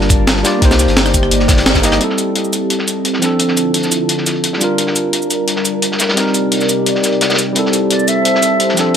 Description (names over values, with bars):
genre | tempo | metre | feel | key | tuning
liquid drum and bass | 173 BPM | 4/4 | straight | A phrygian | A4 = 440 Hz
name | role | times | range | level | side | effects
bright tine electric piano | accompaniment | 0.0-9.0 s | F3 to Eb5 | -16 LUFS | equal | ping-pong delay
airy breathy pad | sustained chords | 0.0-9.0 s | C3 to A5 | -19 LUFS | equal | chorus
saturated sub bass | bass | 0.0-2.0 s | G1 to C2 | -17 LUFS | equal | none
crunchy breakbeat drum kit | drums | 0.0-9.0 s | hi-hat, snare drum | -20 LUFS | left 1 dB | high-pass filter on hats, low-pass filter on hats, high-pass filter on snare, low-pass filter on snare, high-pass filter on room, low-pass filter on room
breakbeat sampler-style drum kit | drums | 0.1-9.0 s | hi-hat, rim click, shaker, snare drum | -17 LUFS | equal | none
electronic kick drum | drums | 0.1-1.8 s | none | -14 LUFS | equal | none
mellow silver concert flute | melody | 7.9-8.8 s | D5 to E5 | -16 LUFS | right 2 dB | ping-pong delay
room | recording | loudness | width
light reverb, small room ambience | none | -12 LUFS | side -8 dB against mid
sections
0.0-2.0 A section; 2.0-9.0 B section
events
drop 0.0-2.0; band accent 1.7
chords
0.0 Gm7; 0.6 Cm7; 2.0 Am7; 3.2 Dm7; 4.6 Gm7; 6.2 Cm7; 7.6 Am7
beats
0.28 | 0.62 0.97 1.31 1.66 | 2.01 2.36 2.70 3.05 | 3.40 3.74 4.09 4.44 | 4.78 5.13 5.48 5.82 | 6.17 6.52 6.86 7.21 | 7.56 7.91 8.25 8.60 | 8.95